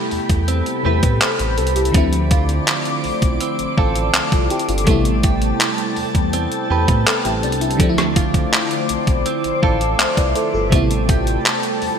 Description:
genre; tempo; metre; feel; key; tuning
contemporary R&B; 82 BPM; 4/4; straight; A minor; A4 = 439 Hz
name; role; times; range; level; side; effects
FM electric piano with soft pad layer; accompaniment; 0.0-12.0 s; C3 to E5; -22 LUFS; left 1 dB; chorus, phaser
glassy FM pad; sustained chords; 0.0-12.0 s; G4 to D6; -24 LUFS; left 2 dB; ensemble chorus, built-in reverb
direct-recorded clean electric guitar; arpeggios; 0.0-12.0 s; D3 to B4; -25 LUFS; right 8 dB; lush chorus, digital delay
smooth synth bass; bass; 0.1-11.9 s; G1 to A2; -21 LUFS; equal; none
detuned 8-bit digital drum machine; drums; 0.1-12.0 s; handclaps, hi-hat, kick drum, rim click; -18 LUFS; equal; overdrive, gated reverb
room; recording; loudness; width
light reverb; bright 1980s-style digital production; -15 LUFS; side -7 dB against mid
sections
0.0-12.0 A section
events
none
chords
0.0 Am9; 1.9 Dm7; 4.9 Am9; 7.8 Dm7; 10.7 Am9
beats
0.48 1.21 | 1.94 2.67 3.41 4.14 | 4.87 5.60 6.33 7.07 | 7.80 8.53 9.26 9.99 | 10.72 11.46

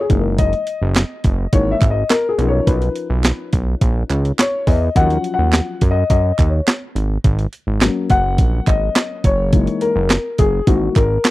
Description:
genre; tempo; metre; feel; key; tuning
early-eighties boogie funk; 105 BPM; 4/4; straight; unclear; A4 = 440 Hz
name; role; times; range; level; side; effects
dark concert grand piano; accompaniment; 0.0-11.3 s; Fb3 to Gb5; -19 LUFS; left 4 dB; none
fat analog bass; bass; 0.1-11.2 s; Gb1 to Gb2; -18 LUFS; equal; none
crisp 8-bit digital drum machine; drums; 0.1-11.3 s; handclaps, hi-hat, kick drum, snare drum; -16 LUFS; right 1 dB; overdrive
group handclap; percussion; 1.0-11.3 s; none; -25 LUFS; right 8 dB; none
room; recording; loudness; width
little or no reverb; dry, close 1970s-style studio recording; -14 LUFS; side -18 dB against mid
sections
0.0-11.3 A section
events
grand piano solo 0.0-11.3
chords
0.1 Gb13; 2.4 Bmaj9#11; 5.0 Ebm9; 7.0 Ab7sus4; 9.2 Gb13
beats
| 0.39 0.96 1.53 2.10 | 2.67 3.24 3.82 4.39 | 4.96 5.53 6.10 6.67 | 7.24 7.82 8.39 8.96 | 9.53 10.10 10.67 11.24

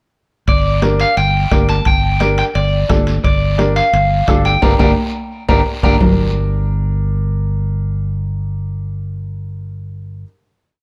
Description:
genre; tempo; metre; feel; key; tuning
latin, cumbia; 174 BPM; 4/4; straight; G minor; A4 = 440 Hz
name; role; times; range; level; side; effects
electric guitar at the edge of break-up; melody; 0.5-6.0 s; D5 to Bb5; -20 LUFS; equal; spring reverb
fingered electric bass; bass; 0.5-10.2 s; G1; -20 LUFS; equal; none
bombo; percussion; 0.5-6.1 s; none; -19 LUFS; equal; none
congas; percussion; 0.5-6.1 s; none; -23 LUFS; equal; none
guiro; percussion; 0.5-6.1 s; none; -34 LUFS; equal; none
timbales; percussion; 0.5-6.1 s; none; -30 LUFS; equal; none
warm upright piano; accompaniment; 0.8-10.2 s; D4 to Bb4; -23 LUFS; equal; none
room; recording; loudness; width
light reverb; dark, warm production; -15 LUFS; mono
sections
0.5-6.0 A section; 6.0-8.8 final chord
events
band accent 4.6-6.0; drum fill 5.1-6.0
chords
0.5 Gm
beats
| 0.48 0.83 1.17 1.52 | 1.86 2.21 2.56 2.90 | 3.25 3.59 3.94 4.28 | 4.63 4.97 5.32 5.66 | 6.01 6.35 6.70 7.04 | 7.39 7.74 8.08 8.43

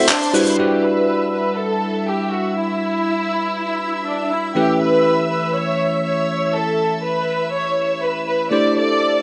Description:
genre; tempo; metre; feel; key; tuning
nu-disco, nu disco; 121 BPM; 4/4; straight; E minor; A4 = 441 Hz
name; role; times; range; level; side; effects
barky tine electric piano; accompaniment; 0.0-9.2 s; E3 to C5; -23 LUFS; equal; phaser
string machine, full ensemble; sustained chords; 0.0-9.2 s; A4 to E6; -28 LUFS; equal; ensemble chorus
warm studio violin section; melody; 0.1-9.2 s; D4 to D5; -22 LUFS; equal; none
damped 70s drum kit; drums; 0.1-0.6 s; handclaps, hi-hat, shaker; -20 LUFS; equal; low-pass filter on hats, low-pass filter on perc, low-pass filter on snare, low-pass filter on room
room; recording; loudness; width
light reverb, studio ambience; dry, gritty hardware recording, nothing above 10.5 kHz; -19 LUFS; mono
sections
0.6-9.2 A section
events
band accent 0.1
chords
0.0 F#7(b5, no3); 0.6 Em9; 4.6 A9/E; 8.5 D9sus4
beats
0.09 | 0.59 1.08 1.58 2.07 | 2.57 3.07 3.56 4.06 | 4.55 5.05 5.54 6.04 | 6.54 7.03 7.53 8.02 | 8.52 9.02

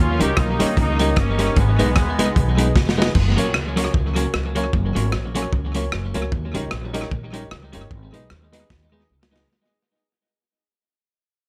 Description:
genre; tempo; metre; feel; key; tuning
ska; 151 BPM; 4/4; swing 57% on 8ths; F# major; A4 = 440 Hz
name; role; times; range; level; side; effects
warm horn section; melody; 0.0-2.8 s; G#3 to G4; -27 LUFS; equal; tape echo, plate reverb
upright bass; bass; 0.0-9.4 s; F#1 to D#2; -25 LUFS; equal; none
clean electric guitar; accompaniment; 0.2-9.4 s; F#3 to D#4; -28 LUFS; equal; tape echo
warm upright piano; stabs; 0.2-9.5 s; C#4 to D#5; -30 LUFS; equal; tape echo, plate reverb
crunchy breakbeat drum kit; drums; 0.2-9.5 s; crash cymbal, hi-hat, kick drum, rim click, snare drum; -24 LUFS; equal; tape echo
room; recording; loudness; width
light reverb; none; -20 LUFS; mono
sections
0.0-3.1 A section; 3.1-9.5 B section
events
drum fill 2.8-3.1, 8.7-9.5; fade-out 3.1-9.5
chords
0.0 D#7; 1.6 G#m; 3.1 F#; 6.3 D#7; 7.9 G#m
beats
0.37 0.77 1.17 | 1.56 1.96 2.36 2.75 | 3.15 3.54 3.94 4.34 | 4.73 5.13 5.53 5.92 | 6.32 6.72 7.11 7.51 | 7.91 8.30 8.70 9.10

